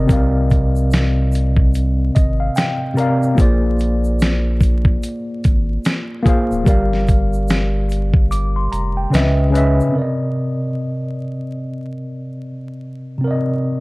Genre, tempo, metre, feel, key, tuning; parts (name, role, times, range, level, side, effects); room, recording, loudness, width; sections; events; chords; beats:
lo-fi hip hop; 73 BPM; 4/4; swing 61% on 16ths; C minor; A4 = 439 Hz
mellow tine electric piano; accompaniment; 0.0-13.8 s; C3 to D6; -19 LUFS; equal; overdrive, medium stereo tremolo, cassette tape, low-pass filter
saturated sub bass; bass; 0.0-9.8 s; D1 to Db2; -18 LUFS; equal
dusty soul sampler-style drum kit; drums; 0.1-9.8 s; hi-hat, kick drum, snare drum; -15 LUFS; equal
egg shaker; percussion; 0.1-9.9 s; -44 LUFS; right 4 dB
little or no reverb; dark, warm production, vinyl crackle; -15 LUFS; side -23 dB against mid
0.0-10.0 A section; 10.0-13.8 B section
tine electric piano fill 1.7-3.4; kick muted 8.3-10.0
0.0 Cm9; 3.4 Bb7; 6.7 Gm7; 9.1 Dbm9; 10.0 Cm9
| 0.09 0.92 1.74 2.56 | 3.38 4.20 5.03 5.85 | 6.67 7.49 8.31 9.13 | 9.96 10.78 11.60 12.42 | 13.24